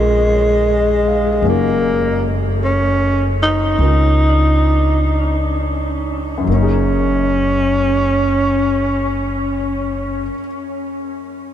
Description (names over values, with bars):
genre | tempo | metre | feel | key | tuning
jazz ballad | 42-56 BPM | 4/4 | swing 66% on 8ths | F# major | A4 = 440 Hz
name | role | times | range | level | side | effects
growling tenor saxophone | melody | 0.0-10.3 s | G#3 to D#4 | -17 LUFS | equal | analog delay
warm grand piano | accompaniment | 0.0-11.5 s | F#2 to E#5 | -23 LUFS | left 3 dB | lush chorus
upright bass | bass | 0.0-10.3 s | F#1 to C#2 | -18 LUFS | equal | none
room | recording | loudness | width
moderate huge ambient reverb, RT60 7.2 s | dreamy mix soaked in reverb | -14 LUFS | side -10 dB against mid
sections
0.0-6.5 A section; 6.5-11.5 B section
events
slowing down 0.0-6.5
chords
0.0 F#69